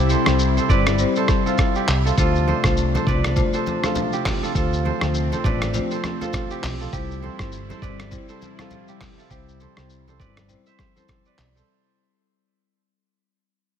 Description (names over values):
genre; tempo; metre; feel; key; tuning
afrobeats; 101 BPM; 4/4; swing 58% on 16ths; unclear; A4 = 440 Hz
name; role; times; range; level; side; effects
marimba with medium mallets; accompaniment; 0.0-11.2 s; G3 to C5; -26 LUFS; left 6 dB; none
lush unison pad; sustained chords; 0.0-11.6 s; C3 to E4; -30 LUFS; left 1 dB; chorus, phaser
kora; riff; 0.0-12.9 s; E4 to E5; -27 LUFS; right 10 dB; ping-pong delay
hollow-body short-scale fingered electric bass; bass; 0.0-11.6 s; G1 to D2; -23 LUFS; equal; none
lo-fi sampler-style drum kit; drums; 0.1-11.7 s; handclaps, hi-hat, kick drum, rim click, shaker; -24 LUFS; equal; vintage 12-bit sampler grit
congas; percussion; 2.5-11.6 s; none; -34 LUFS; left 2 dB; none
room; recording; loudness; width
small room reverb; none; -18 LUFS; side -8 dB against mid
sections
0.0-11.7 A section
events
fade-out 0.0-11.7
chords
0.0 C; 2.2 Dm7; 6.9 C